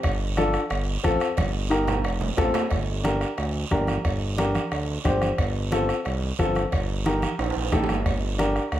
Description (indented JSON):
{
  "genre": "latin, cumbia",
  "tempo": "180 BPM",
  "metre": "4/4",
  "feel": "straight",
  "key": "G minor",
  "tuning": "A4 = 440 Hz",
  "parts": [
    { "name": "smooth synth bass", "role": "bass", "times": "0.0-8.8 s", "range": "F1 to D2", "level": "-27 LUFS", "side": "equal", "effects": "none" },
    { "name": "bombo", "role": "percussion", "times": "0.0-8.8 s", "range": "none", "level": "-29 LUFS", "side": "equal", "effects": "none" },
    { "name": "congas", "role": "percussion", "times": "0.0-8.6 s", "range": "none", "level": "-33 LUFS", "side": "right 2 dB", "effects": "none" },
    { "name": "cowbell and timbales", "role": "percussion", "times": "0.0-8.8 s", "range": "none", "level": "-33 LUFS", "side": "right 6 dB", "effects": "none" },
    { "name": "guiro", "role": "percussion", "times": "0.0-8.8 s", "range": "none", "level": "-37 LUFS", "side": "right 7 dB", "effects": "none" },
    { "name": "dark upright piano", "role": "accompaniment", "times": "0.4-8.6 s", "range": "C4 to C5", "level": "-25 LUFS", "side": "left 2 dB", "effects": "none" }
  ],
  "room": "light reverb",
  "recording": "none",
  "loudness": "-22 LUFS",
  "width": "side -12 dB against mid",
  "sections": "0.0-2.7 A section; 2.7-8.8 B section",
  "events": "drum fill 1.4-2.7, 7.4-8.1",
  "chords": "0.0 Dm/G; 0.7 F/G; 1.4 Eb/G; 2.0 F; 2.7 Gm; 5.4 F/G; 6.7 Eb/G; 8.1 Gm"
}